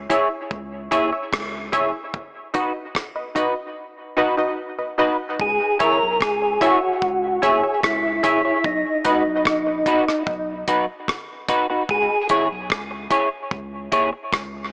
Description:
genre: dub reggae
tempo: 74 BPM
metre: 4/4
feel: straight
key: C# dorian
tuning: A4 = 439 Hz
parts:
  - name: warm sub bass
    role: bass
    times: 0.0-14.7 s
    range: F#1 to D#2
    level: -39 LUFS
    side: equal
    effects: none
  - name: semi-hollow electric guitar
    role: accompaniment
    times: 0.1-14.2 s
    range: D#4 to C#5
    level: -25 LUFS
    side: equal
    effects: analog chorus, dub echo
  - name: filtered dub chord stab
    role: stabs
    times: 0.1-9.2 s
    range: D#4 to E5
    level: -27 LUFS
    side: equal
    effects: chorus, dub echo
  - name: damped 70s drum kit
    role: drums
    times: 0.1-14.5 s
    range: hi-hat, kick drum, rim click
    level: -28 LUFS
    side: equal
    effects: dub echo
  - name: percussive tonewheel organ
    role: melody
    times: 5.4-12.3 s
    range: D#4 to A#4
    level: -23 LUFS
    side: equal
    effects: chorus vibrato, low-pass filter, dub echo
room: moderate plate reverb, RT60 2.5 s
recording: small speaker sound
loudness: -21 LUFS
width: mono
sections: 0.0-5.4 A section; 5.4-14.7 B section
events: break 0.0-5.4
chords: 0.0 C#m; 2.1 B; 5.4 C#m; 8.6 B; 11.9 C#m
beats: 0.51 1.32 | 2.14 2.95 3.77 4.58 | 5.39 6.21 7.02 7.83 | 8.64 9.46 10.27 11.08 | 11.89 12.70 13.51 14.32

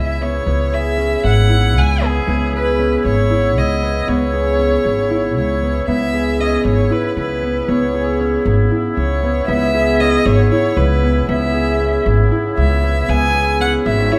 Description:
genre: contemporary instrumental, chamber music in an uneven meter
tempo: 233 BPM (eighths)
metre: 7/8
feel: straight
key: C# minor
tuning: A4 = 441 Hz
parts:
  - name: warm violin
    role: melody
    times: 0.0-14.2 s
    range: G#4 to G#5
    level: -22 LUFS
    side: equal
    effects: none
  - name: warm woodwind section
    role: sustained chords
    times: 0.0-14.2 s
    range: C#3 to E4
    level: -27 LUFS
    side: equal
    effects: none
  - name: concert harp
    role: arpeggios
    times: 0.0-14.2 s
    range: B3 to G#4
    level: -21 LUFS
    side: equal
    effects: none
  - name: upright bass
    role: bass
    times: 0.0-14.1 s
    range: G#1 to C#2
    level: -20 LUFS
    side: equal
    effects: none
room: wet recital hall reverb, RT60 1.5 s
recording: none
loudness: -16 LUFS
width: mono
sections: 0.0-5.9 A section; 5.9-14.2 B section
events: none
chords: 0.0 C#m7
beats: 0.21 | 0.47 0.73 0.98 1.24 1.50 1.76 2.02 | 2.27 2.53 2.79 3.05 3.30 3.56 3.82 | 4.08 4.33 4.59 4.85 5.11 5.37 5.62 | 5.88 6.14 6.39 6.65 6.91 7.17 7.42 | 7.68 7.94 8.20 8.46 8.71 8.97 9.23 | 9.48 9.74 10.00 10.26 10.51 10.77 11.03 | 11.29 11.54 11.80 12.06 12.31 12.57 12.83 | 13.09 13.34 13.60 13.86 14.12

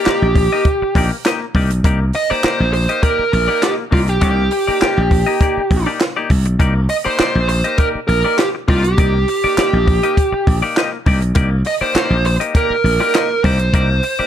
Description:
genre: funk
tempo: 101 BPM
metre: 4/4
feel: straight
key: C minor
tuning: A4 = 440 Hz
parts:
  - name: dark smooth lead guitar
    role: melody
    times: 0.0-14.3 s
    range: F4 to Eb5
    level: -17 LUFS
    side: right 2 dB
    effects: overdrive
  - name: clean electric guitar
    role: accompaniment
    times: 0.0-14.3 s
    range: Bb3 to Eb5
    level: -22 LUFS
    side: left 6 dB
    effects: none
  - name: slap bass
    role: bass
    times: 0.1-14.2 s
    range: Bb1 to C2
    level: -16 LUFS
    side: equal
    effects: none
  - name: compact cocktail drum kit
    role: drums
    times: 0.1-14.2 s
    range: handclaps, hi-hat, kick drum, snare drum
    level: -18 LUFS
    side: equal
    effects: none
room: studio reverb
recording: dark, warm production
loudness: -13 LUFS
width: side -10 dB against mid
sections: 0.0-14.3 A section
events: none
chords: 0.0 Cm9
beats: 0.06 0.65 1.25 | 1.84 2.44 3.03 3.63 | 4.22 4.82 5.41 6.01 | 6.60 7.20 7.79 8.39 | 8.98 9.58 10.17 10.77 | 11.36 11.95 12.55 13.14 | 13.74

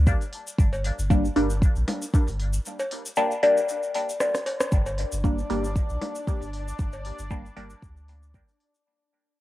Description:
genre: dub techno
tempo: 116 BPM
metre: 4/4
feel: swing 55% on 16ths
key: G minor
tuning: A4 = 440 Hz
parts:
  - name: pure sine sub bass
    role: bass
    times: 0.0-8.4 s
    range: G1 to D2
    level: -26 LUFS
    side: equal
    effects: tube saturation, sidechain pumping
  - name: electronic kick drum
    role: drums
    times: 0.1-8.5 s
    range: none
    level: -22 LUFS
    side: equal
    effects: cassette tape
  - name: tube shaker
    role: percussion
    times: 0.1-8.8 s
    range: none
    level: -40 LUFS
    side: left 2 dB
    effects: none
  - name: deep house drum kit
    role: drums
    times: 0.2-8.7 s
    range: hi-hat, rim click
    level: -31 LUFS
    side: equal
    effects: cassette tape
  - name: cowbell and bongos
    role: percussion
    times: 0.7-7.0 s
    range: none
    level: -35 LUFS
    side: equal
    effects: sidechain pumping on perc, cassette tape, dub echo
  - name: filtered dub chord stab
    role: stabs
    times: 1.1-7.7 s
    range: G3 to D4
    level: -25 LUFS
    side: left 1 dB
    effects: phaser, sidechain pumping, dub echo
  - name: bubbling stepped-filter texture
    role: texture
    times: 5.0-8.9 s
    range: D4 to D5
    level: -38 LUFS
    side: left 2 dB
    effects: chorus, built-in reverb, sidechain pumping
room: moderate spring reverb, RT60 2.7 s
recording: home recording on cassette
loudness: -23 LUFS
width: side -15 dB against mid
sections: 0.0-4.7 A section; 4.7-8.9 B section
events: drum fill 4.2-4.7; fade-out 4.7-8.9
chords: 0.0 Gm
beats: 0.07 | 0.58 1.10 1.62 2.14 | 2.65 3.17 3.69 4.21 | 4.72 5.24 5.76 6.27 | 6.79 7.31 7.83 8.34

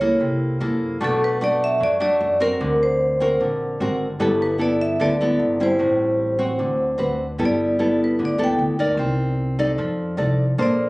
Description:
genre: bossa nova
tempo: 150 BPM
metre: 4/4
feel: straight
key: G major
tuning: A4 = 440 Hz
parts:
  - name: vibraphone with medium hard mallets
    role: melody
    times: 0.0-10.9 s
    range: A4 to G5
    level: -21 LUFS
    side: equal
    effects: none
  - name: nylon-string guitar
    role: accompaniment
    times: 0.0-10.9 s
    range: A2 to D5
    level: -21 LUFS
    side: equal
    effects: none
  - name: upright bass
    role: bass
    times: 0.0-10.9 s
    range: G1 to F#2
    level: -27 LUFS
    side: equal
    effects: none
room: moderate large studio reverb, RT60 0.8 s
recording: recorded on a phone in the room, studio reverb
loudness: -18 LUFS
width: side -23 dB against mid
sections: 0.0-7.4 A section; 7.4-10.9 B section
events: vibraphone solo 7.4-10.9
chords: 0.2 C6; 1.0 Bm7; 2.6 Daug7; 4.2 G69; 5.8 Am7; 6.6 D6; 7.4 G69; 9.0 Cm9; 9.8 F6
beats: 0.21 0.61 | 1.01 1.41 1.81 2.21 | 2.60 3.00 3.40 3.80 | 4.20 4.60 5.00 5.40 | 5.80 6.20 6.59 6.99 | 7.39 7.79 8.19 8.59 | 8.98 9.38 9.78 10.18 | 10.58

